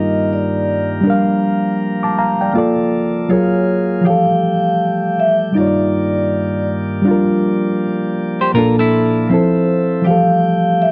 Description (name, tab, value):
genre	lo-fi hip hop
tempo	80 BPM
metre	4/4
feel	swing 61% on 16ths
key	F major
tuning	A4 = 440 Hz
part	vibraphone with soft mallets	melody	0.0-10.9 s	C5 to F5	-20 LUFS	equal	low-pass filter
part	bright reed electric piano	accompaniment	0.0-10.9 s	Bb2 to D6	-18 LUFS	equal	overdrive, low-pass filter
part	chamber organ, sparkling flutes	sustained chords	0.0-10.9 s	G2 to G5	-24 LUFS	equal	low-pass filter
part	clean electric guitar	second line	8.4-9.3 s	E4 to C5	-20 LUFS	equal	low-pass filter, tape echo
room	wet studio reverb, RT60 0.5 s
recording	dark, warm production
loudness	-16 LUFS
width	mono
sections	0.0-10.1 A section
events	none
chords	0.0 Eb/G; 1.1 Gm7; 3.3 Gbmaj9; 4.1 Fmaj9; 5.6 Ebmaj7/G; 7.1 Gm7; 8.6 Bbmaj7; 9.3 Fmaj7; 10.1 Fmaj9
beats	0.30 | 1.05 1.80 2.55 3.30 | 4.05 4.80 5.55 6.30 | 7.05 7.80 8.55 9.30 | 10.05 10.80